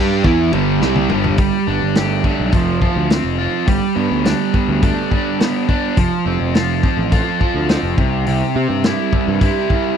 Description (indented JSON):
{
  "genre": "classic rock",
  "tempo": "105 BPM",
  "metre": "4/4",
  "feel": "straight",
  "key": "G mixolydian",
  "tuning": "A4 = 440 Hz",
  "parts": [
    { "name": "overdriven electric guitar", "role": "riff", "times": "0.0-10.0 s", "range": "G2 to G4", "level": "-21 LUFS", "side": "left 16 dB", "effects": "none" },
    { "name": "overdriven electric guitar", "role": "riff", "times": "0.0-1.4 s", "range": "G2 to G4", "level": "-21 LUFS", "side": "equal", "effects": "none" },
    { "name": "overdriven semi-hollow guitar", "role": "riff", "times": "0.0-10.0 s", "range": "G2 to A4", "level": "-20 LUFS", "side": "right 13 dB", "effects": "none" },
    { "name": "fuzz picked electric bass", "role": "bass", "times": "0.0-9.5 s", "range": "F1 to C3", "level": "-20 LUFS", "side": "equal", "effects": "overdrive" },
    { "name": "vintage drum kit", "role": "drums", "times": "0.2-9.8 s", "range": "hi-hat, kick drum, ride cymbal, snare drum, toms", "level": "-17 LUFS", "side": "left 1 dB", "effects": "none" }
  ],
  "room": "little or no reverb",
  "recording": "dry, close 1970s-style studio recording",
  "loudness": "-14 LUFS",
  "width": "side -8 dB against mid",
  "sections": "0.0-1.4 A section; 1.4-10.0 B section",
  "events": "drum fill 0.8-1.4",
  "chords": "0.0 G; 1.4 Gsus2; 2.5 F5; 3.7 Gadd9; 6.0 F; 8.0 C"
}